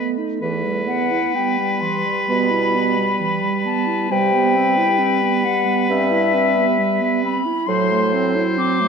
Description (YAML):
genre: classical, slow romantic movement for wind quintet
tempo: 66 BPM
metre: 4/4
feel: rubato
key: E minor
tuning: A4 = 440 Hz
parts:
  - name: silver concert flute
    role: melody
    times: 0.0-8.9 s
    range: D#5 to D6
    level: -21 LUFS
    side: left 6 dB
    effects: none
  - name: bright oboe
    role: second line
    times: 0.0-8.9 s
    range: B4 to C5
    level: -23 LUFS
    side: left 1 dB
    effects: none
  - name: clear clarinet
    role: accompaniment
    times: 0.0-8.9 s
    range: E3 to E4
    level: -22 LUFS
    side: right 9 dB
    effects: none
  - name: mellow French horn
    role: accompaniment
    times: 0.0-8.9 s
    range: F#3 to A3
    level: -25 LUFS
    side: equal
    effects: none
  - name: warm bassoon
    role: bass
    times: 0.4-8.4 s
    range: E2 to C3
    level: -24 LUFS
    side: right 2 dB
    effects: none
room: wet scoring stage reverb, RT60 1.7 s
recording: none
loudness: -16 LUFS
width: side -6 dB against mid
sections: 0.0-8.9 A section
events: none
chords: 0.4 Em; 4.1 Cmaj7; 7.7 F#m7b5/A